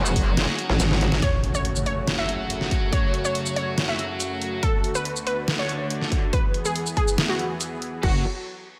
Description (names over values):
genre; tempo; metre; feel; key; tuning
heavy wobble dubstep; 141 BPM; 4/4; half-time; F# minor; A4 = 441 Hz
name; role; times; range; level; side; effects
supersaw pad; sustained chords; 0.0-8.2 s; D2 to C#5; -34 LUFS; equal; sidechain pumping
heavy high-gain guitar; stabs; 0.0-8.2 s; D4 to F#5; -36 LUFS; equal; distortion, low-pass filter, tape echo
metallic wobble bass; bass; 0.0-0.5 s; F#1; -25 LUFS; equal; distortion, chorus, overdrive
dubstep drum kit; drums; 0.1-8.1 s; crash cymbal, hi-hat, shaker, snare drum; -30 LUFS; equal; none
electronic kick drum; drums; 0.2-8.1 s; none; -25 LUFS; equal; none
metallic wobble bass; bass; 0.7-1.2, 8.0-8.2 s; F#1 to A1; -24 LUFS; equal; chorus, overdrive
unison pluck; melody; 1.2-8.2 s; F#4 to E5; -31 LUFS; equal; tape echo
impact; sound effects; 1.2-2.9 s; none; -32 LUFS; equal; none
room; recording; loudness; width
light reverb; none; -24 LUFS; mono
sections
0.0-1.2 A section; 1.2-8.0 B section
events
drop 0.0-1.2; drum fill 0.8-1.2; band accent 1.1; impact 1.2-2.9; filter sweep on distorted electric guitar 1.2-8.0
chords
0.0 F#5; 1.2 F#m; 4.6 D; 6.3 E; 8.0 F#m